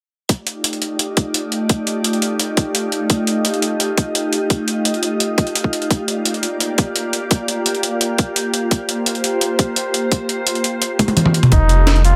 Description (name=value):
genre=liquid drum and bass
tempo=171 BPM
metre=4/4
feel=straight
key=unclear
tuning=A4 = 441 Hz
part: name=glassy FM pad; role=sustained chords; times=0.6-12.2 s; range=G3 to Eb5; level=-23 LUFS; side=equal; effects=ensemble chorus, built-in reverb
part: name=breakbeat sampler-style drum kit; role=drums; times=0.3-12.1 s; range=hi-hat, snare drum, toms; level=-20 LUFS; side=equal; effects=none
part: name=electronic kick drum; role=drums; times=0.3-11.6 s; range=none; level=-18 LUFS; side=equal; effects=high-pass filter on kick
part: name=warm flugelhorn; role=melody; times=11.5-12.2 s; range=Eb4 to F4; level=-21 LUFS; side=equal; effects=none
part: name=warm sub bass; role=bass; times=11.5-12.2 s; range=F1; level=-14 LUFS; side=equal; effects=none
room=light reverb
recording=none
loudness=-18 LUFS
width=mono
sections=0.3-11.5 A section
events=filter sweep on ambient pad 0.3-11.5; drum fill 11.0-11.5; kick drops out 11.2-11.5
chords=0.3 F13; 5.9 Gm7; 11.5 F13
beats=| 0.29 0.64 0.99 1.34 | 1.70 2.05 2.40 2.75 | 3.10 3.45 3.80 4.15 | 4.50 4.85 5.20 5.55 | 5.91 6.26 6.61 6.96 | 7.31 7.66 8.01 8.36 | 8.71 9.06 9.41 9.77 | 10.12 10.47 10.82 11.17 | 11.52 11.87